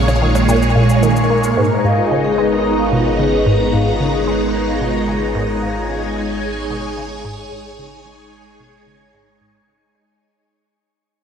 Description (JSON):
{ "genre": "ambient, sequencer-driven space music", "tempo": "111 BPM", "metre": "4/4", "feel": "straight", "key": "unclear", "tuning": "A4 = 441 Hz", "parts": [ { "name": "phased string machine", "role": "sustained chords", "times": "0.0-10.2 s", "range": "Bb2 to Bb5", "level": "-17 LUFS", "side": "right 1 dB", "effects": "ensemble chorus, phaser" }, { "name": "resonant blip pluck", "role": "riff", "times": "0.0-10.0 s", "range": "Ab2 to Bb3", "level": "-20 LUFS", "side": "equal", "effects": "phaser, cassette tape, ping-pong delay" }, { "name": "warm sub bass", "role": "bass", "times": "0.0-10.2 s", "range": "Ab1 to Bb1", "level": "-24 LUFS", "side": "equal", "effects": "none" }, { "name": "wind-like tuned noise texture", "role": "texture", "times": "0.0-10.2 s", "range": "Db5 to Db6", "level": "-31 LUFS", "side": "right 1 dB", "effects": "built-in reverb, shimmer reverb" }, { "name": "shaker and percussion blips", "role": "percussion", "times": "0.1-1.5 s", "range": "none", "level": "-27 LUFS", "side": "left 1 dB", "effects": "ping-pong delay" }, { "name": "vibraphone with soft mallets", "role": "arpeggios", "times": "1.6-5.8 s", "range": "F4 to Bb5", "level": "-21 LUFS", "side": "left 3 dB", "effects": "auto-pan, shimmer reverb, ping-pong delay" } ], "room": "wet lush hall reverb, RT60 2.7 s", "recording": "dreamy mix soaked in reverb", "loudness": "-14 LUFS", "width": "side -7 dB against mid", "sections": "0.0-1.6 A section; 1.6-10.2 B section", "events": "fade-out on synth arpeggio sound 1.6-10.2; fade-out on sub bass 1.6-10.2; fade-out 1.6-10.2", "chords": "0.0 Bbm7; 1.6 Abm", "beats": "0.49 1.03 | 1.57 2.11 2.65 3.19 | 3.73 4.27 4.81 5.35 | 5.89 6.43 6.97 7.51 | 8.05 8.60 9.14 9.68" }